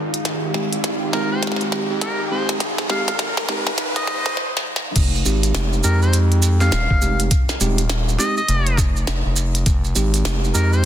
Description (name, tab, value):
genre	glitch hop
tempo	102 BPM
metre	4/4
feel	swing 62% on 16ths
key	F minor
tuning	A4 = 440 Hz
part	warm analog pad	sustained chords	0.0-4.3 s	Eb3 to G4	-29 LUFS	equal	chorus, sidechain pumping
part	gritty driven synth bass	bass	0.0-10.9 s	Eb1 to F2	-20 LUFS	equal	overdrive, high-pass filter
part	riser	sound effects	0.0-4.4 s	none	-28 LUFS	equal	none
part	deep dark ambient pad	texture	0.0-4.4 s	Ab3 to F5	-31 LUFS	equal	chorus, built-in reverb, sidechain pumping
part	glitchy drum kit	drums	0.1-10.4 s	crash cymbal, hi-hat, snare drum	-24 LUFS	equal	soft clipping on snare, high-pass filter on snare, high-pass filter on hats, high-pass filter on cymbals, high-pass filter on room
part	mellow tine electric piano	stabs	0.5-10.9 s	Ab3 to G4	-25 LUFS	right 2 dB	sidechain pumping, dub echo
part	overdriven harmonica	melody	1.1-10.9 s	Bb4 to F5	-26 LUFS	left 1 dB	dub echo
part	electronic kick drum	drums	5.0-9.8 s	none	-18 LUFS	equal	none
part	maracas	percussion	5.0-10.8 s	none	-27 LUFS	right 6 dB	none
room	light reverb, digital ambience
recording	dense, heavily limited modern master, high-pass filter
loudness	-17 LUFS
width	side -10 dB against mid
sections	0.0-5.0 A section; 5.0-10.9 B section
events	build-up 0.0-5.0; drum fill 0.0-4.4, 4.4-5.0; riser 0.0-4.4; filter sweep on tine electric piano 0.0-5.0; drop 5.0-10.9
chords	0.0 Fm7